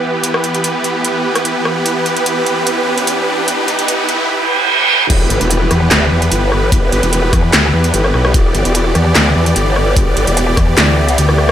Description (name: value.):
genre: heavy wobble dubstep.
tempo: 148 BPM.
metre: 4/4.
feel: half-time.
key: E minor.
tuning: A4 = 440 Hz.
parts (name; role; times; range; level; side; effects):
supersaw chords; sustained chords; 0.0-11.5 s; E3 to D5; -16 LUFS; right 1 dB; sidechain pumping.
riser, reverse cymbal and impact; sound effects; 2.1-6.7 s; none; -18 LUFS; right 2 dB; none.
dubstep drum kit; drums; 0.2-11.5 s; crash cymbal, handclaps, hi-hat, rim click, snare drum; -15 LUFS; equal; high-pass filter on hats, high-pass filter on snare, high-pass filter on cymbals.
growl bass; bass; 5.1-11.5 s; E1 to E2; -13 LUFS; left 1 dB; chorus, overdrive.
electronic kick drum; drums; 5.1-10.7 s; none; -13 LUFS; left 1 dB; none.
room: light reverb.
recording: high-pass filter.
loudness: -11 LUFS.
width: side -10 dB against mid.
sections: 0.0-5.1 A section; 5.1-11.5 B section.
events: build-up 0.0-5.1; filter sweep 0.0-5.1; riser 2.1-4.3; reverse cymbal 4.3-5.1; drop 5.1-11.5; impact 5.1-6.7.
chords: 0.0 Em.